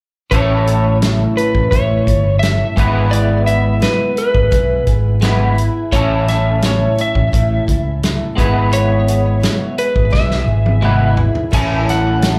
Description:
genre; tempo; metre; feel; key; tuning
folk rock and heartland rock; 85 BPM; 4/4; straight; unclear; A4 = 442 Hz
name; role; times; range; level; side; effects
electric slide guitar; melody; 0.3-12.4 s; B4 to G#5; -21 LUFS; equal; plate reverb, digital delay
picked twelve-string acoustic guitar; accompaniment; 0.3-12.4 s; G#2 to A4; -30 LUFS; equal; plate reverb, slapback echo
electric guitar at the edge of break-up; riff; 0.3-12.4 s; A2 to B4; -22 LUFS; equal; ensemble chorus, slapback echo
fingered electric bass; bass; 0.3-12.4 s; G1 to C#2; -18 LUFS; equal; none
natural country drum kit; drums; 0.3-12.4 s; crash cymbal, hi-hat, kick drum, snare drum, toms; -20 LUFS; equal; none
room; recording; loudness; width
light reverb; live gig heard through the venue's PA, club reverb; -15 LUFS; mono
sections
0.3-12.4 A section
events
drum fill 10.1-11.5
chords
0.3 A; 2.8 E/G#; 5.9 A; 8.4 E/G#; 11.5 A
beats
| 0.30 1.00 1.71 2.41 | 3.11 3.81 4.51 5.21 | 5.92 6.62 7.32 8.02 | 8.73 9.43 10.13 10.84 | 11.54 12.24

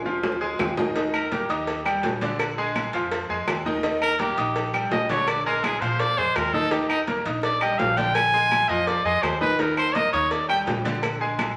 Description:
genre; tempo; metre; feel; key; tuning
latin, salsa; 167 BPM; 4/4; straight; Eb major; A4 = 441 Hz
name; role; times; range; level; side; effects
bright grand piano; accompaniment; 0.1-11.5 s; D3 to Eb6; -29 LUFS; equal; none
upright bass; bass; 0.1-11.5 s; Bb1 to Bb2; -36 LUFS; equal; none
bongos and cowbell; percussion; 0.1-11.6 s; none; -35 LUFS; equal; none
congas; percussion; 0.1-11.6 s; none; -39 LUFS; equal; none
timbales and agogo bells; percussion; 0.2-11.6 s; none; -34 LUFS; equal; none
claves; percussion; 0.6-11.6 s; none; -36 LUFS; equal; none
clear trumpet; melody; 1.1-1.9, 4.0-10.6 s; Eb4 to Ab5; -26 LUFS; equal; none
room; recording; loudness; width
wet large studio reverb, RT60 1.3 s; vinyl crackle; -24 LUFS; mono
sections
1.0-11.6 A section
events
drum fill 0.0-1.0; trumpet solo 1.0-11.6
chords
0.0 Bb7 (rootless); 1.0 Ebmaj7; 2.4 Bb7; 3.8 Ebmaj7; 5.3 Bb7; 6.7 Ebmaj7; 8.2 Bb7; 9.6 Ebmaj7; 11.0 Bb7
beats
0.24 0.60 | 0.96 1.32 1.68 2.04 | 2.40 2.76 3.12 3.48 | 3.84 4.20 4.56 4.92 | 5.28 5.64 6.00 6.36 | 6.72 7.08 7.44 7.80 | 8.15 8.52 8.87 9.23 | 9.59 9.95 10.31 10.67 | 11.03 11.39

